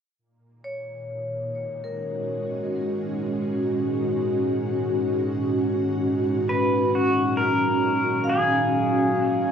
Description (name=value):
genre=ambient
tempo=free time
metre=none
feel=none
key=unclear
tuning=A4 = 439 Hz
part: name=deep rumbling drone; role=bass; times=2.7-9.5 s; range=G#2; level=-36 LUFS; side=equal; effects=built-in reverb
part: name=ethereal airy pad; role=sustained chords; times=1.0-9.5 s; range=A#2 to F#4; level=-24 LUFS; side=equal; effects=ensemble chorus, built-in reverb, cassette tape, plate reverb
part: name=bowed-like drone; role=drone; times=1.7-9.5 s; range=G#3 to D#4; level=-36 LUFS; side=right 1 dB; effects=built-in reverb, cassette tape, plate reverb
part: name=vibraphone with hard mallets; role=arpeggios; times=0.6-9.5 s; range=A#4 to E#5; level=-31 LUFS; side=left 1 dB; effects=cassette tape, plate reverb, tape echo
part: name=pedal steel guitar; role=melody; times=6.5-9.5 s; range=F#4 to B4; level=-23 LUFS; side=left 1 dB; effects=cassette tape, plate reverb, tape echo
room=wet small room reverb, RT60 0.5 s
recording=home recording on cassette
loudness=-21 LUFS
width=side -7 dB against mid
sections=0.2-9.5 A section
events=fade-in on synth drone 0.2-9.5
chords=0.2 G#sus2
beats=free time